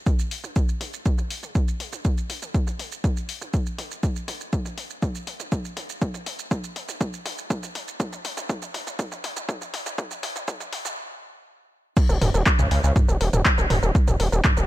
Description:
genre	melodic techno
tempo	121 BPM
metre	4/4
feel	straight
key	unclear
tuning	A4 = 441 Hz
part	electronic kick drum	drums	0.1-14.5 s	none	-22 LUFS	equal	overdrive
part	punchy analog drum machine	drums	0.1-14.7 s	crash cymbal, handclaps, hi-hat, shaker, toms	-28 LUFS	equal	overdrive, high-pass filter on toms, high-pass filter on perc, high-pass filter on hats, high-pass filter on cymbals, high-pass filter on snare
part	gritty driven synth bass	bass	12.1-14.7 s	Eb1 to Db2	-21 LUFS	equal	sidechain pumping
room	little or no reverb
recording	dark, warm production, high-pass filter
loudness	-23 LUFS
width	side -15 dB against mid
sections	0.0-12.0 A section; 12.0-14.7 B section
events	build-up 0.0-12.0; drum fill 0.0-11.0; filter sweep 0.0-12.0; stop 11.0-12.0; drop 12.0-14.7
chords	none

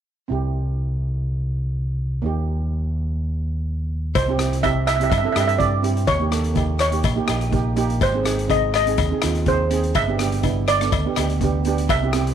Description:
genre	calypso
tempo	124 BPM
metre	4/4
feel	swing 54% on 16ths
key	unclear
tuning	A4 = 441 Hz
part	steel pan	accompaniment	0.3-12.3 s	Bb3 to A4	-25 LUFS	right 8 dB	none
part	overdriven fingered electric bass	bass	0.3-12.3 s	G1 to G2	-23 LUFS	equal	none
part	steel pan	melody	4.2-12.3 s	C5 to E5	-22 LUFS	right 2 dB	none
part	street-band drum kit	drums	4.2-12.3 s	hi-hat, kick drum, rim click	-25 LUFS	left 2 dB	none
part	cowbell	percussion	4.2-12.0 s	none	-29 LUFS	left 15 dB	none
room	light reverb, small room ambience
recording	1960s-style stereo with parts hard left and right, lossy compression artefacts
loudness	-19 LUFS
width	side -9 dB against mid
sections	0.3-4.2 A section; 4.2-12.3 B section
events	none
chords	0.3 C; 2.2 Eb; 4.2 C; 6.1 Eb7; 8.0 Ab; 10.0 G

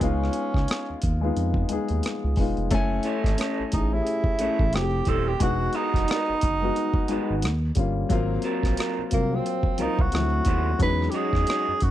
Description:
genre	R&B, neo-soul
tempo	89 BPM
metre	4/4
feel	swing 59% on 16ths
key	F# dorian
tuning	A4 = 440 Hz
part	warm tenor saxophone	melody	0.0-11.9 s	A#3 to B4	-27 LUFS	right 3 dB	slapback echo
part	dark baby grand piano	accompaniment	0.0-11.9 s	E#3 to G#5	-28 LUFS	left 4 dB	none
part	smooth synth bass	bass	0.0-11.9 s	D#1 to F#2	-26 LUFS	equal	none
part	boom bap sampler-style drum kit	drums	0.0-11.9 s	hi-hat, kick drum, rim click	-25 LUFS	equal	none
part	electric guitar through a small old amp	second line	3.0-11.7 s	F#3 to C#5	-32 LUFS	right 4 dB	spring reverb
room	little or no reverb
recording	dry, close 1970s-style studio recording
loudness	-22 LUFS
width	side -13 dB against mid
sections	0.0-11.9 A section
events	none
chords	0.0 C#7; 2.7 F#m7; 4.7 Fmaj9; 5.4 Emaj9; 7.4 D#9; 8.1 G#13; 10.1 D9; 10.8 Emaj13

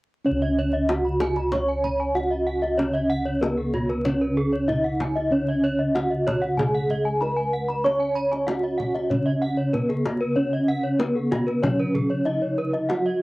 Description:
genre	Balinese gamelan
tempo	95 BPM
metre	4/4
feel	straight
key	Db slendro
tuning	A4 = 440 Hz
part	gamelan-type bronze metallophone	melody	0.2-13.2 s	Cb4-45c to Db5	-24 LUFS	right 1 dB	none
part	gamelan-type bronze metallophone	accompaniment	0.3-13.2 s	Db3 to Db4	-32 LUFS	equal	cassette tape
part	gamelan-type bronze metallophone	arpeggios	0.3-13.0 s	Ab4+25c to Db6	-28 LUFS	left 2 dB	cassette tape, tape echo
part	gamelan-type bossed gongs	bass	0.3-13.2 s	Db2 to Db5	-30 LUFS	equal	none
part	gamelan-type bronze metallophone	arpeggios	0.4-13.2 s	Gb4-35c to Cb6-45c	-31 LUFS	right 2 dB	cassette tape, tape echo
part	kendang	percussion	0.9-13.0 s	none	-30 LUFS	left 2 dB	none
room	moderate booth ambience, RT60 0.3 s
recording	home recording on cassette, vinyl crackle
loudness	-21 LUFS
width	side -20 dB against mid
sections	0.3-13.2 A section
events	none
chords	none

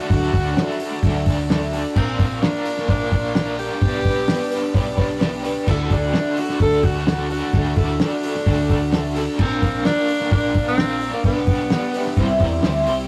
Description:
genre	folk rock and heartland rock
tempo	129 BPM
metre	4/4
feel	straight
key	unclear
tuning	A4 = 440 Hz
part	clear tenor saxophone	melody	0.0-12.6 s	Bb3 to A4	-27 LUFS	equal	slapback echo
part	picked twelve-string acoustic guitar	accompaniment	0.0-13.1 s	Bb2 to B4	-29 LUFS	equal	none
part	musette accordion	sustained chords	0.0-13.1 s	F3 to G4	-40 LUFS	equal	none
part	overdriven electric guitar	riff	0.0-13.1 s	Bb2 to C5	-28 LUFS	equal	tremolo
part	hollow-body short-scale fingered electric bass	bass	0.1-13.1 s	Bb1 to E2	-29 LUFS	equal	none
part	cloth-damped thuddy drum kit	drums	0.1-13.0 s	crash cymbal, hi-hat, kick drum, snare drum	-24 LUFS	equal	none
part	warm upright piano	second line	0.5-5.4, 11.9-13.0 s	E4 to G5	-36 LUFS	equal	none
room	wet booth ambience, RT60 0.2 s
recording	rough rehearsal-room recording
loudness	-20 LUFS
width	mono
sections	0.0-13.1 A section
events	none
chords	0.0 D; 2.0 Bb; 3.8 G/B; 5.7 D; 9.4 Bb; 11.2 G/B; 12.2 C

